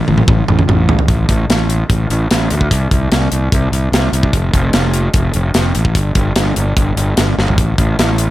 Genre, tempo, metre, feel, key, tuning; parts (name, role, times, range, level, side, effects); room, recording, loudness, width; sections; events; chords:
hard rock; 148 BPM; 4/4; straight; A minor; A4 = 443 Hz
fuzz fingered electric bass; bass; 0.1-8.3 s; F1 to D2; -14 LUFS; equal; overdrive
tight metal drum kit; drums; 0.1-8.3 s; hi-hat, kick drum, snare drum, toms; -15 LUFS; equal
little or no reverb; -12 LUFS; side -15 dB against mid
0.0-1.1 A section; 1.1-8.3 B section
drum fill 0.0-1.1, 7.4